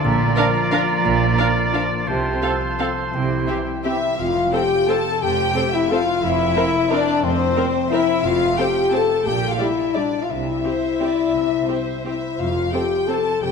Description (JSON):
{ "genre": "classical, orchestral ballroom waltz", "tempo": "161-193 BPM", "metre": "3/4", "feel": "rubato", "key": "F major", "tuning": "A4 = 439 Hz", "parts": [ { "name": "clear oboe", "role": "second line", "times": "0.0-4.0 s", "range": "C5 to D5", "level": "-26 LUFS", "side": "right 2 dB", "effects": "none" }, { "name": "mellow small flute group", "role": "second line", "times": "0.0-4.0 s", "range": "G5 to Bb5", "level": "-28 LUFS", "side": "right 5 dB", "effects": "none" }, { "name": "warm clarinet", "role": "second line", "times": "0.0-4.0 s", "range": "E4 to F4", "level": "-28 LUFS", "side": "left 1 dB", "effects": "none" }, { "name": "concert harp", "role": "arpeggios", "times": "0.0-13.5 s", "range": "F2 to A5", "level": "-29 LUFS", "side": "left 8 dB", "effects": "none" }, { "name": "rich chamber cello section", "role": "bass", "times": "0.0-13.5 s", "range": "F2 to C3", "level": "-29 LUFS", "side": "right 4 dB", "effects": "none" }, { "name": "warm chamber double bass section", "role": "bass", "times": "0.0-13.5 s", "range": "F1 to C2", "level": "-27 LUFS", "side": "right 6 dB", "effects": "none" }, { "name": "dark chamber violin section", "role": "melody", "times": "0.4-13.2 s", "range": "C5 to F5", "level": "-32 LUFS", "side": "left 3 dB", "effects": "none" }, { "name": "rich chamber violin section", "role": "second line", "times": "0.4-13.5 s", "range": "G4 to A5", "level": "-27 LUFS", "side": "left 2 dB", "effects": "none" }, { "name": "warm chamber viola section", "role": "accompaniment", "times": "0.4-13.2 s", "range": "G3 to Bb4", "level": "-28 LUFS", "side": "right 1 dB", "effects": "none" }, { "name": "warm French horn section", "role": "sustained chords", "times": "0.4-13.5 s", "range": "E3 to A4", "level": "-21 LUFS", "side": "left 4 dB", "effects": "none" }, { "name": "dark trumpet section", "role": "stabs", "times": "0.4-4.0 s", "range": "G4 to Bb4", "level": "-30 LUFS", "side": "right 3 dB", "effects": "none" } ], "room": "wet concert hall reverb, RT60 1.9 s", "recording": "none", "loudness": "-17 LUFS", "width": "side -5 dB against mid", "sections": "0.0-4.2 A section; 4.2-13.5 B section", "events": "none", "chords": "0.0 Bb; 2.1 F/C; 3.1 C; 4.2 F; 6.2 C7/F; 8.2 F; 9.3 Gm/Bb; 10.3 C; 12.4 F", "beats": "| 0.04 0.37 0.71 | 1.04 1.38 1.73 | 2.07 2.42 2.79 | 3.13 3.48 3.85 | 4.19 4.53 4.89 | 5.22 5.55 5.90 | 6.23 6.56 6.91 | 7.23 7.56 7.91 | 8.24 8.58 8.93 | 9.26 9.60 9.96 | 10.29 10.64 11.01 | 11.35 11.69 12.05 | 12.39 12.73 13.08 | 13.42" }